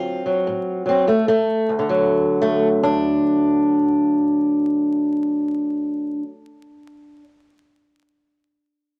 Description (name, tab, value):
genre	acoustic country blues, solo or duo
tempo	free time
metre	none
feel	none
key	D mixolydian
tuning	A4 = 442 Hz
part	fingerpicked old ladder-braced acoustic guitar	solo	0.0-7.2 s	D2 to F4	-20 LUFS	equal	none
room	wet studio reverb, RT60 0.8 s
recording	vinyl crackle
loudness	-20 LUFS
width	mono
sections	0.0-1.7 A section; 1.7-6.7 B section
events	slowing down 0.0-1.7; stop 0.0-1.1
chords	0.0 D7; 1.1 N.C.; 1.7 D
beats	free time